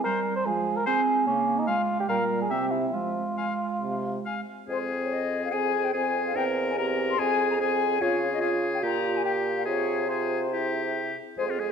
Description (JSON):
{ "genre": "quick classical-period movement for wind quintet", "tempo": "144 BPM", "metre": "4/4", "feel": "rubato", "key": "F minor", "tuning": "A4 = 440 Hz", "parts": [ { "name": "dark clarinet", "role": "accompaniment", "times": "0.0-11.7 s", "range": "G3 to C5", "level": "-30 LUFS", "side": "right 7 dB", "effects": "none" }, { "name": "mellow bassoon", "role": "bass", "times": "0.0-11.7 s", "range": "E2 to C5", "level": "-29 LUFS", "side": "right 1 dB", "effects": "none" }, { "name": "concert flute", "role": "melody", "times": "0.1-11.7 s", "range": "C5 to C6", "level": "-31 LUFS", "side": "left 9 dB", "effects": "none" }, { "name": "clear oboe", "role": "second line", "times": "0.1-11.7 s", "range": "F4 to F5", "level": "-31 LUFS", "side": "left 4 dB", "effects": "none" }, { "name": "clear French horn", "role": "accompaniment", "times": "0.5-11.7 s", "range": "Bb2 to F4", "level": "-33 LUFS", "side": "left 1 dB", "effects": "none" } ], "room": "wet concert hall reverb, RT60 1.9 s", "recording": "none", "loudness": "-24 LUFS", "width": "side -6 dB against mid", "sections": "0.0-4.7 A section; 4.7-11.7 A section", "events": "none", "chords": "0.5 Fm; 1.3 Db; 2.1 Gm7/Bb; 2.5 C; 2.9 Fm; 6.4 C7/E; 7.2 Fm; 8.0 Db; 8.8 Gm7/Bb; 9.7 Fm/C; 10.5 C", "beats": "0.04 0.46 0.86 | 1.27 1.68 2.09 2.51 | 2.93 3.37 3.81 4.25 | 4.69 5.12 5.53 5.95 | 6.36 6.78 7.19 7.60 | 8.01 8.42 8.83 9.24 | 9.66 10.09 10.52 10.95 | 11.38" }